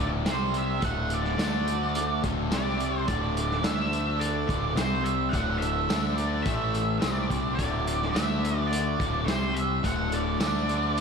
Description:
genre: classic rock.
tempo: 107 BPM.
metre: 4/4.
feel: straight.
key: D mixolydian.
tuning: A4 = 440 Hz.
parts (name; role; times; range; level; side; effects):
octave-fuzz lead guitar; melody; 0.0-11.0 s; C5 to F#5; -30 LUFS; right 3 dB; wah, distortion, slapback echo.
picked steel-string acoustic guitar; accompaniment; 0.0-11.0 s; C3 to E5; -40 LUFS; right 3 dB; none.
crunchy overdriven guitar; riff; 0.0-11.0 s; D2 to D4; -32 LUFS; left 11 dB; slapback echo.
overdriven semi-hollow guitar; riff; 0.0-11.0 s; D2 to D4; -33 LUFS; right 8 dB; slapback echo.
growling picked electric bass; bass; 0.0-11.0 s; D1 to D2; -31 LUFS; equal; overdrive.
vintage drum kit; drums; 0.3-11.0 s; hi-hat, kick drum, snare drum, tambourine; -31 LUFS; right 1 dB; none.
tonewheel organ; sustained chords; 7.6-11.0 s; G3 to D5; -44 LUFS; left 1 dB; none.
room: moderate concert hall reverb, RT60 1.9 s, small room ambience.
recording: big arena sound.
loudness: -24 LUFS.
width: side -6 dB against mid.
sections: 0.0-11.0 A section.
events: none.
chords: 0.3 C5; 0.8 D; 2.5 C5; 3.1 D; 4.8 C5; 5.3 D; 6.5 A5; 7.0 D; 9.3 C5; 9.8 D.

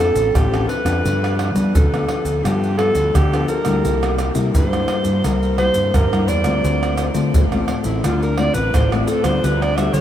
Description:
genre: samba and choro.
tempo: 86 BPM.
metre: 4/4.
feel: straight.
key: unclear.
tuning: A4 = 436 Hz.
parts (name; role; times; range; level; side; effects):
mellow alto saxophone; melody; 0.0-10.0 s; E4 to E5; -21 LUFS; right 1 dB; none.
nylon-string guitar; accompaniment; 0.0-10.0 s; G2 to A4; -23 LUFS; left 4 dB; none.
fuzz fingered electric bass; bass; 0.0-10.0 s; A1 to G3; -21 LUFS; equal; overdrive.
maracas, surdo, pandeiro and tamborim; percussion; 0.2-10.0 s; none; -21 LUFS; right 1 dB; none.
room: moderate huge ambient reverb, RT60 7.9 s.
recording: in a vast, echoing space.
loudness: -15 LUFS.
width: side -11 dB against mid.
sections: 0.0-10.0 A section.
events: alto saxophone solo 0.0-10.0.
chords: 0.0 Dm7; 1.1 G7; 3.8 C7; 6.6 Dm7; 9.4 G7/D.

